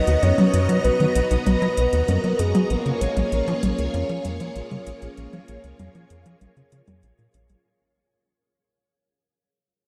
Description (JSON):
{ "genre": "ambient, sequencer-driven space music", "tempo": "97 BPM", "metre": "4/4", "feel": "straight", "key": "unclear", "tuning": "A4 = 441 Hz", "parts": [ { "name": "soft octave-layered synth lead", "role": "melody", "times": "0.0-7.0 s", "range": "Ab4 to D#5", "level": "-27 LUFS", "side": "equal", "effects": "chorus, phaser, delay" }, { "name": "string machine, full ensemble", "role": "sustained chords", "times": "0.0-7.6 s", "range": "Bb3 to Bb5", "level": "-30 LUFS", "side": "equal", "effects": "phaser, ensemble chorus" }, { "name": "tight sequencer bass", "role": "riff", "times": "0.1-7.6 s", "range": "Bb1 to F#3", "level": "-25 LUFS", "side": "equal", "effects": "analog chorus" }, { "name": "soft vintage rhythm box", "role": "percussion", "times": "0.1-7.6 s", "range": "hi-hat, toms", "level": "-28 LUFS", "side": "equal", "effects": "none" } ], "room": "moderate huge ambient reverb, RT60 8.6 s", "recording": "none", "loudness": "-21 LUFS", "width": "mono", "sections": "0.0-7.7 A section", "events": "fade-out 0.0-7.7", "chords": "0.0 Bmaj7; 2.7 Bbm7" }